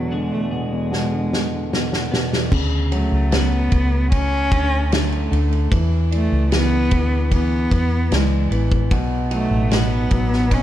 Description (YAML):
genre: pop ballad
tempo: 75 BPM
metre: 4/4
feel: straight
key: unclear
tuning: A4 = 440 Hz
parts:
  - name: clear cello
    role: melody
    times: 0.0-10.6 s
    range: F#3 to C#4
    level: -24 LUFS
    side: equal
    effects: none
  - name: warm concert grand piano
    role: accompaniment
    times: 0.0-10.6 s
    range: E2 to F#3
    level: -25 LUFS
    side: equal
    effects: none
  - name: twelve-string electric guitar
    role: arpeggios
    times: 0.0-10.6 s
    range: B2 to G#4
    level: -30 LUFS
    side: left 1 dB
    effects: spring reverb
  - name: loose indie drum kit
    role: drums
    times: 0.9-10.6 s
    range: crash cymbal, kick drum, ride cymbal, snare drum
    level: -22 LUFS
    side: equal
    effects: none
  - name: vintage muted fingered electric bass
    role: bass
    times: 2.5-10.6 s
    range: A1 to E2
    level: -20 LUFS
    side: equal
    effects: none
room: light reverb, studio ambience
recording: dark, warm production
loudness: -17 LUFS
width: side -12 dB against mid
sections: 0.0-2.5 A section; 2.5-10.6 B section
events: drum fill 0.9-2.5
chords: 0.0 E7; 2.5 Dmaj7; 5.7 E7; 8.9 B